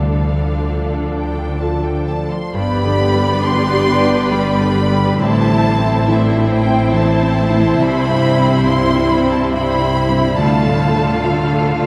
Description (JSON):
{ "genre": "cinematic, emotional film score for orchestra", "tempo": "69 BPM", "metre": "3/4", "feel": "rubato", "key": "unclear", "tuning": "A4 = 440 Hz", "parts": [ { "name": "rich studio violin section", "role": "melody", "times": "0.0-11.7 s", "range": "E5 to C6", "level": "-24 LUFS", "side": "equal", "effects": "none" }, { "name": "rich studio violin section", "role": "second line", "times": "0.0-11.9 s", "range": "E4 to F5", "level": "-25 LUFS", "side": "equal", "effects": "none" }, { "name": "clear grand piano", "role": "accompaniment", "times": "0.0-11.9 s", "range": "C2 to A4", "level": "-23 LUFS", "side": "equal", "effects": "none" }, { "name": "rich studio viola section", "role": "accompaniment", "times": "0.0-11.9 s", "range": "A3 to G4", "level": "-23 LUFS", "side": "equal", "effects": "none" }, { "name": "concert harp", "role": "arpeggios", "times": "0.0-11.9 s", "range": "G2 to A4", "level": "-24 LUFS", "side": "equal", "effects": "none" }, { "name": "clear studio cello section", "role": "bass", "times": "0.0-11.9 s", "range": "G2 to D3", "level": "-23 LUFS", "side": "equal", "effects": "none" }, { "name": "rich studio double bass section", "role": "bass", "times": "0.0-11.9 s", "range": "G1 to D2", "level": "-24 LUFS", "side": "equal", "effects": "none" } ], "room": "wet cathedral reverb, RT60 6.4 s", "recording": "in a vast, echoing space", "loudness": "-15 LUFS", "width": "mono", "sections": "0.0-2.5 A section; 2.5-11.9 B section", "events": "none", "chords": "0.0 Dm; 2.5 G; 5.2 Am; 7.8 C; 10.4 Dm" }